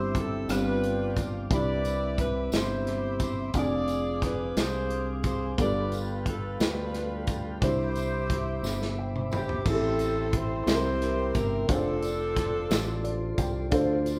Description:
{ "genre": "slow gospel", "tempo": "59 BPM (dotted quarters)", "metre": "6/8", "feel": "straight", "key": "C major", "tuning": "A4 = 440 Hz", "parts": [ { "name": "warm saxophone section", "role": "melody", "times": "0.0-13.4 s", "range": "C4 to D5", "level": "-34 LUFS", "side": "equal", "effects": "none" }, { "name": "dark grand piano", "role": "accompaniment", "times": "0.0-14.2 s", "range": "G2 to B5", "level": "-35 LUFS", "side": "equal", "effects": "none" }, { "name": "mellow tonewheel organ", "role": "sustained chords", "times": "0.0-14.2 s", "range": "C4 to E6", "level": "-39 LUFS", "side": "equal", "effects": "slow rotary speaker" }, { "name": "fingered electric bass", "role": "bass", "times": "0.0-14.2 s", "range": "F1 to D2", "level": "-35 LUFS", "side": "equal", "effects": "none" }, { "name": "modern studio drum kit", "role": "drums", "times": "0.1-14.2 s", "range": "crash cymbal, hi-hat, kick drum, rim click, snare drum, toms", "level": "-33 LUFS", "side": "equal", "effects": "none" }, { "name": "tambourine", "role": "percussion", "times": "0.5-14.2 s", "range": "none", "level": "-50 LUFS", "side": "equal", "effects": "none" } ], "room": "moderate large studio reverb, RT60 1.2 s", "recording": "band playing live in one room", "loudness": "-28 LUFS", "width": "mono", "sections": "0.0-9.7 A section; 9.7-14.2 B section", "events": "drum fill 8.6-9.7; grand piano fill 8.6-9.7, 12.7-13.7", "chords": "0.5 G7sus4; 1.5 Cmaj9; 3.5 Fm6; 5.6 G9; 7.6 Cmaj9; 9.7 Am7; 10.7 C7; 11.7 F6" }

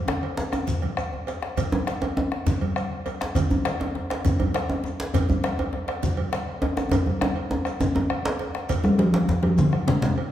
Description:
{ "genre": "west african traditional, West African drum ensemble", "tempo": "135 BPM (dotted quarters)", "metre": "12/8", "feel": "straight", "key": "unclear", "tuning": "A4 = 439 Hz", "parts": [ { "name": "bombo", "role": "percussion", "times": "0.1-10.0 s", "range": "none", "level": "-30 LUFS", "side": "left 1 dB", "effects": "none" }, { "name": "cowbell", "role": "percussion", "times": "0.1-10.3 s", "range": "none", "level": "-34 LUFS", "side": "right 6 dB", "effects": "none" }, { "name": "djembe", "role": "percussion", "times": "0.1-10.0 s", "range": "none", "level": "-31 LUFS", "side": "left 2 dB", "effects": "none" }, { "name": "djembe", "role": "percussion", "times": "0.1-10.2 s", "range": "none", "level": "-27 LUFS", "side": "equal", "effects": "none" }, { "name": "congas", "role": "percussion", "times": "0.2-9.9 s", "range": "none", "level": "-32 LUFS", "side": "right 2 dB", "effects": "none" }, { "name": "shekere", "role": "percussion", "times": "0.4-10.1 s", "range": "none", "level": "-36 LUFS", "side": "left 2 dB", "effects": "none" }, { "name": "talking drum", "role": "melody", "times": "8.8-10.3 s", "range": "C3 to G3", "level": "-20 LUFS", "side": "equal", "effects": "none" } ], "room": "wet recital hall reverb, RT60 1.6 s", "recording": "recorded in a church or concert hall", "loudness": "-22 LUFS", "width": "side -12 dB against mid", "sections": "0.0-8.7 A section; 8.7-10.3 B section", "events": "drum fill 0.8-1.6, 6.9-8.7", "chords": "none" }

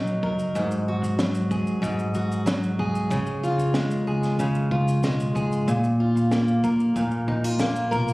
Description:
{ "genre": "acoustic pop", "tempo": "94 BPM", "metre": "4/4", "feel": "straight", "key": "unclear", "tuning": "A4 = 440 Hz", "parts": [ { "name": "fingerpicked steel-string acoustic guitar", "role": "accompaniment", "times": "0.0-8.1 s", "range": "Ab2 to A#4", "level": "-22 LUFS", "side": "equal", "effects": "none" }, { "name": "hollow-body short-scale fingered electric bass", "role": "bass", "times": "0.0-8.1 s", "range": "F#1 to Db2", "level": "-32 LUFS", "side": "equal", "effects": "none" }, { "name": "compact cocktail drum kit", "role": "drums", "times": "0.1-8.1 s", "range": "kick drum, shaker, snare drum", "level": "-30 LUFS", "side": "equal", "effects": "none" } ], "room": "light reverb", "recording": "recorded on a phone in the room, studio reverb", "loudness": "-21 LUFS", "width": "side -21 dB against mid", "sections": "0.0-8.1 A section", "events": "none", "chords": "0.0 Bmaj7 (rootless); 0.6 Ab7(no3); 3.1 Db; 5.7 Bb5" }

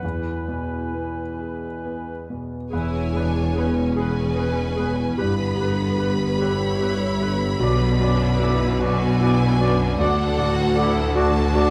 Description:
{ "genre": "cinematic, emotional film score for orchestra", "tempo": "44-51 BPM (dotted quarters)", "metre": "6/8", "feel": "rubato", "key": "E mixolydian", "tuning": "A4 = 440 Hz", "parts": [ { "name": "mellow clarinet", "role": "second line", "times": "0.0-11.7 s", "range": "E4 to G#4", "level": "-32 LUFS", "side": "equal", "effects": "none" }, { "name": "mellow flute section", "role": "second line", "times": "0.0-2.4 s", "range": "G#5", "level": "-41 LUFS", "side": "equal", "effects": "none" }, { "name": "warm oboe", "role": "second line", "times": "0.0-11.7 s", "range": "B4 to D5", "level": "-32 LUFS", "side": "equal", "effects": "none" }, { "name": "warm concert grand piano", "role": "accompaniment", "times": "0.0-11.7 s", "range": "B1 to G#4", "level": "-28 LUFS", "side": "equal", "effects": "none" }, { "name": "concert harp", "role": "arpeggios", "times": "0.0-11.7 s", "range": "G2 to B5", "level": "-33 LUFS", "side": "equal", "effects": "none" }, { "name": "rich studio violin section", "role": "melody", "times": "2.7-11.7 s", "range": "F#5 to B5", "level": "-33 LUFS", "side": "equal", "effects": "none" }, { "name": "clear studio violin section", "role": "second line", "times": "2.7-11.7 s", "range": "F#4 to C#5", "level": "-36 LUFS", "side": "equal", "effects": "none" }, { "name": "bright studio viola section", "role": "accompaniment", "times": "2.7-11.7 s", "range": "B3 to F#4", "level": "-34 LUFS", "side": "equal", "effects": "none" }, { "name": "dark French horn section", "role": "sustained chords", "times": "2.7-11.7 s", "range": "B3 to G#4", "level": "-33 LUFS", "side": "equal", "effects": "none" }, { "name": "clear studio cello section", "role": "bass", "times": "2.7-11.7 s", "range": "D2 to B2", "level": "-28 LUFS", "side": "equal", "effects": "none" }, { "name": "clear studio double bass section", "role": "bass", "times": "2.7-11.7 s", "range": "E1 to D2", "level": "-28 LUFS", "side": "equal", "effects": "none" } ], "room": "moderate scoring stage reverb, RT60 1.8 s", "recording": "none", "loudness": "-22 LUFS", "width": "mono", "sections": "0.0-2.7 A section; 2.7-11.7 A section", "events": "none", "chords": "0.0 E; 5.2 G; 7.6 Bm; 10.0 D" }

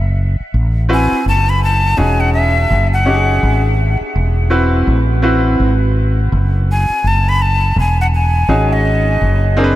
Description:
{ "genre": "hip hop, jazz-hop", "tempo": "83 BPM", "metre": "4/4", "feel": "swing 60% on 16ths", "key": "E major", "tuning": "A4 = 445 Hz", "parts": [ { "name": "mellow fretless electric bass", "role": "bass", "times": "0.0-9.8 s", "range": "E1 to A1", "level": "-14 LUFS", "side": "equal", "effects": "none" }, { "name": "breathy bright jazz flute", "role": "melody", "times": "0.9-9.8 s", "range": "D#5 to B5", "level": "-18 LUFS", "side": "left 1 dB", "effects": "analog delay" }, { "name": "bright grand piano", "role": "accompaniment", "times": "0.9-9.8 s", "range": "C4 to B4", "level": "-18 LUFS", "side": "equal", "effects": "none" } ], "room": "moderate huge ambient reverb, RT60 6.9 s", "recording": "dreamy mix soaked in reverb", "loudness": "-11 LUFS", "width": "side -15 dB against mid", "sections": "0.0-9.8 A section", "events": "flute solo 0.0-9.8", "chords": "0.0 Am6; 2.0 Emaj13; 4.2 E5; 4.9 Am6; 7.8 Emaj13" }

